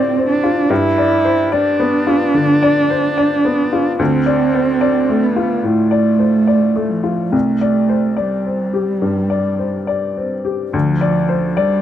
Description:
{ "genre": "neoclassical piano and strings", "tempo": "72 BPM", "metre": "4/4", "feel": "rubato", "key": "D dorian", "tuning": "A4 = 439 Hz", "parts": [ { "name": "muted cello", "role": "second line", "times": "0.0-11.8 s", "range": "F3 to E4", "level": "-16 LUFS", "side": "right 4 dB", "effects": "none" }, { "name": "bright upright piano", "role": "accompaniment", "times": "0.0-11.8 s", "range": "C2 to D5", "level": "-17 LUFS", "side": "left 5 dB", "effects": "none" } ], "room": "moderate booth ambience, RT60 0.2 s", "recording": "dry, close 1970s-style studio recording", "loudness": "-13 LUFS", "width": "side -11 dB against mid", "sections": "0.0-10.7 A section; 10.7-11.8 A section", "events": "none", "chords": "0.0 Dm7; 0.7 G7; 4.0 Dm7; 7.3 Csus2; 10.7 Dm7", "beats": "| 0.70 1.53 2.35 3.17 | 3.99 4.82 5.65 6.48 | 7.33 8.19 9.04 9.89 | 10.74 11.57" }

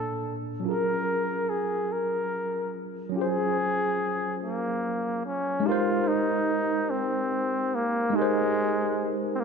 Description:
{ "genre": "R&B", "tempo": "48 BPM (dotted quarters)", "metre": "6/8", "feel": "straight", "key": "Ab major", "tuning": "A4 = 440 Hz", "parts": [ { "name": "breathy flugelhorn", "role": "melody", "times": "0.0-9.4 s", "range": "Ab3 to Bb4", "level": "-27 LUFS", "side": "equal", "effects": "tape echo" }, { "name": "tine electric piano", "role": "accompaniment", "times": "0.0-9.4 s", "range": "Bb2 to A5", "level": "-28 LUFS", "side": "equal", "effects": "overdrive, medium stereo tremolo, tape echo" } ], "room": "moderate echo chamber reverb, RT60 2.6 s", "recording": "echo-heavy mix", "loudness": "-25 LUFS", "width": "side -5 dB against mid", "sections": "0.0-5.7 A section; 5.7-9.4 B section", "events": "none", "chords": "0.0 Bbmaj7; 0.7 Gbmaj9; 5.7 Abmaj9", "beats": "| 0.65 1.90 | 3.15 4.40 | 5.65 6.90 | 8.15 9.40" }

